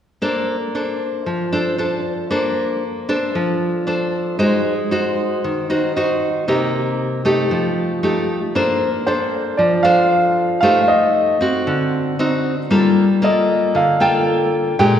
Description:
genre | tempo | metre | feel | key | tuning
bossa nova | 115 BPM | 4/4 | straight | Bb major | A4 = 440 Hz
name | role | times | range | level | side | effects
nylon-string guitar | accompaniment | 0.2-15.0 s | Bb2 to C5 | -17 LUFS | equal | none
warm grand piano | melody | 9.1-15.0 s | C5 to G5 | -16 LUFS | equal | none
room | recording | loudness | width
wet concert hall reverb, RT60 2.2 s | recorded in a church or concert hall | -16 LUFS | side -9 dB against mid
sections
0.2-8.6 A section; 8.6-15.0 B section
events
none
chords
0.2 Bbmaj9; 4.4 Ab7; 6.5 Cm7; 7.5 F9; 8.6 Bbmaj9; 10.6 Am7b5; 11.7 D7b9; 12.7 Gm9

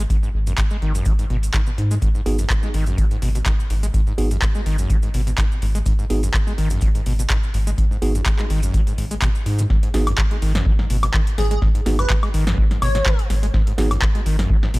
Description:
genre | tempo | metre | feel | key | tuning
acid house | 125 BPM | 4/4 | swing 54% on 16ths | G# minor pentatonic | A4 = 440 Hz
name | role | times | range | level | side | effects
acid bass, saw | riff | 0.0-14.8 s | G#1 to G#3 | -28 LUFS | equal | overdrive, lush chorus, sidechain pumping, tape echo
round analog bass | bass | 0.0-14.8 s | G#1 to G#2 | -20 LUFS | equal | sidechain pumping
electro analog drum machine | drums | 0.1-14.8 s | handclaps, hi-hat, snare drum, woodblock | -26 LUFS | equal | none
electronic kick drum | drums | 0.1-14.6 s | none | -19 LUFS | equal | none
maracas | percussion | 0.1-9.7 s | none | -37 LUFS | right 3 dB | none
bell-like tine electric piano | stabs | 2.3-13.9 s | B3 to G#4 | -28 LUFS | right 2 dB | tape echo
airy dreamy lead | melody | 11.4-13.2 s | G#4 to C#5 | -27 LUFS | equal | chorus, analog delay
room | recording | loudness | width
little or no reverb | dry, gritty hardware recording, transformer saturation | -17 LUFS | side -21 dB against mid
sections
0.0-9.7 A section; 9.7-14.8 B section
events
drop 9.7-14.8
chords
0.0 G#7(no3)

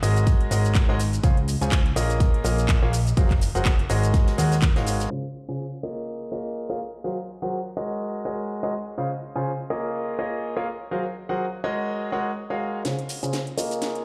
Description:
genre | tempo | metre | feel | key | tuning
piano house | 124 BPM | 4/4 | swing 57% on 16ths | Db major | A4 = 441 Hz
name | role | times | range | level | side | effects
clear concert grand piano | riff | 0.0-14.0 s | Db3 to Ab5 | -29 LUFS | equal | sidechain pumping, low-pass filter, delay
fat analog bass | bass | 0.0-5.1 s | Gb1 to Eb2 | -26 LUFS | equal | sidechain pumping
house drum kit | drums | 0.0-5.1, 12.8-14.0 s | handclaps, hi-hat, shaker, snare drum | -34 LUFS | equal | low-pass filter on hats, low-pass filter on perc, low-pass filter on snare, low-pass filter on room
open jazz drum kit | drums | 0.0-5.1, 12.9-13.9 s | hi-hat, snare drum | -45 LUFS | equal | none
electronic kick drum | drums | 0.3-4.7 s | none | -22 LUFS | equal | none
room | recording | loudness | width
light reverb | played on a big sound system in a bare room, large studio reverb, low-pass filter, faint mains hum | -25 LUFS | mono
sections
0.0-5.1 A section; 5.1-12.8 B section; 12.8-14.0 C section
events
filter sweep 5.1-12.8; build-up 12.8-14.0; drum fill 12.8-14.0; filter sweep on grand piano 12.8-14.0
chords
0.0 Ab9sus4; 1.2 Dbmaj7; 2.2 Bbm7; 3.2 Gbmaj9#11; 3.9 Ab9sus4; 5.1 Dbmaj7; 6.1 Bbm7; 7.0 Gbmaj9#11; 7.8 Ab9sus4; 9.0 Dbmaj7; 9.9 Bbm7; 10.9 Gbmaj9#11; 11.6 Ab9sus4; 12.8 Dbmaj7

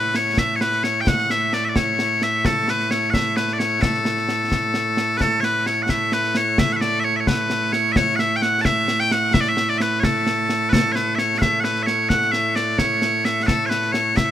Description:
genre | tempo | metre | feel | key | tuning
scottish traditional, Scottish pipe music | 87 BPM (dotted quarters) | 6/8 | straight | A major | A4 = 441 Hz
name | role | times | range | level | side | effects
loud bright bagpipes | melody | 0.0-14.3 s | A2 to A5 | -19 LUFS | equal | none
concert snare drum and concert bass drum | drums | 0.1-14.3 s | none | -23 LUFS | equal | none
room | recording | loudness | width
light reverb | minimal, uncompressed stereo recording | -17 LUFS | side -11 dB against mid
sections
0.0-5.2 A section; 5.2-14.3 A section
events
none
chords
none

